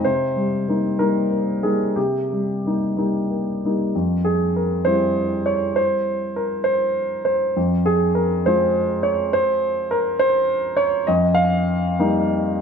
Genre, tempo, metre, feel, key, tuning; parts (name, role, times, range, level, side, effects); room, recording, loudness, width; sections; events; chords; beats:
neoclassical minimalist piano; 59-70 BPM (dotted quarters); 6/8; rubato; A4 = 445 Hz
warm grand piano; solo; 0.0-12.6 s; F2 to F5; -18 LUFS; equal; slapback echo
light reverb; -18 LUFS; side -6 dB against mid
0.0-3.9 A section; 3.9-12.6 B section
0.0 Cm7; 3.9 C/F; 7.6 Fm; 11.1 Ebadd9/F
| 0.04 0.98 | 1.96 2.96 | 3.93 4.85 | 5.77 6.67 | 7.57 8.46 | 9.34 10.19 | 11.07 11.97